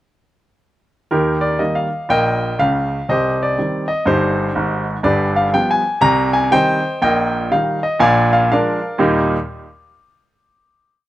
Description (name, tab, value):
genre	jazz, stride piano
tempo	122 BPM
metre	4/4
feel	swing 64% on 8ths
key	Eb major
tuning	A4 = 440 Hz
part	clear grand piano	solo	1.1-9.4 s	G1 to Bb5	-14 LUFS	equal	none
room	little or no reverb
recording	recorded outdoors, with no room sound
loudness	-14 LUFS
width	side -14 dB against mid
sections	1.1-9.0 A section; 9.0-11.0 final chord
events	none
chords	1.1 Eb; 3.1 Cm; 5.0 G7; 6.0 Cm; 7.0 Eb/Bb; 8.0 Bb7; 9.0 Eb